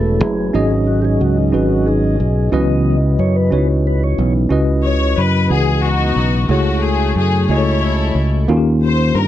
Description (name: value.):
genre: gospel.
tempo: 60 BPM (dotted quarters).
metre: 6/8.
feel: straight.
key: C# minor.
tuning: A4 = 440 Hz.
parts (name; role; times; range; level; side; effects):
tine electric piano; accompaniment; 0.0-9.3 s; G#2 to G#5; -18 LUFS; left 1 dB; medium stereo tremolo.
mellow French horn section; sustained chords; 0.0-4.5 s; E3 to D#5; -29 LUFS; left 4 dB; none.
mellow tonewheel organ; sustained chords; 0.0-4.5 s; E3 to D#5; -20 LUFS; right 4 dB; slow rotary speaker.
fingered electric bass; bass; 0.0-9.3 s; E1 to G2; -16 LUFS; equal; none.
warm studio string section; melody; 4.8-9.3 s; A3 to C#5; -19 LUFS; left 4 dB; none.
room: light reverb.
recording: dry, close 1970s-style studio recording.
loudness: -13 LUFS.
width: side -12 dB against mid.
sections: 0.0-4.5 A section; 4.5-9.3 B section.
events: tonewheel organ solo 0.0-4.5.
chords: 0.0 F#m9; 0.5 G#7sus4; 2.5 C#m11; 6.5 F#m9/C#; 8.5 D#9.